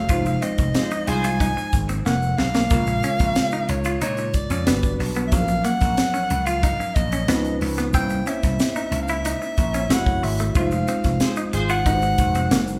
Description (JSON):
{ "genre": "polished 1980s jazz-funk pop", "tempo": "92 BPM", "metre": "4/4", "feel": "straight", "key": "unclear", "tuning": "A4 = 438 Hz", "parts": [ { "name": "breathy soprano saxophone", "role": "melody", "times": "0.0-12.8 s", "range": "Db5 to Ab5", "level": "-28 LUFS", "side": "equal", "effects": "none" }, { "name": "barky tine electric piano", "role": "accompaniment", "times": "0.0-12.8 s", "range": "Db3 to Db5", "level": "-30 LUFS", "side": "equal", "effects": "overdrive" }, { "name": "clean electric guitar", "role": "riff", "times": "0.0-12.6 s", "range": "Gb3 to F4", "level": "-30 LUFS", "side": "equal", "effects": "none" }, { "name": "vintage slap bass", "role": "bass", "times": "0.0-12.8 s", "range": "F1 to Bb2", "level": "-28 LUFS", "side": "equal", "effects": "none" }, { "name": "tight funk drum kit", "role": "drums", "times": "0.1-12.8 s", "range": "hi-hat, kick drum, snare drum", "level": "-26 LUFS", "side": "equal", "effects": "none" }, { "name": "egg shaker", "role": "percussion", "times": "0.1-12.8 s", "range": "none", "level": "-44 LUFS", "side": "equal", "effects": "none" }, { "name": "clear horn section", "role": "second line", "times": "0.7-1.3, 11.2-11.7 s", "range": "F4 to C5", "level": "-32 LUFS", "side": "equal", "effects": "none" } ], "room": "moderate large studio reverb, RT60 1.2 s", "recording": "band playing live in one room", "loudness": "-21 LUFS", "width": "mono", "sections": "0.0-12.8 A section", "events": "band accent 0.1-2.7, 10.6-12.8; drum fill 2.1-2.7", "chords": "0.1 Fm7; 2.7 Bbm7; 4.7 Gmaj7; 5.3 Gbmaj7/Bb; 7.3 Db9; 7.9 C7b9; 9.9 Gbm7; 10.6 Fm7; 11.9 Ab7" }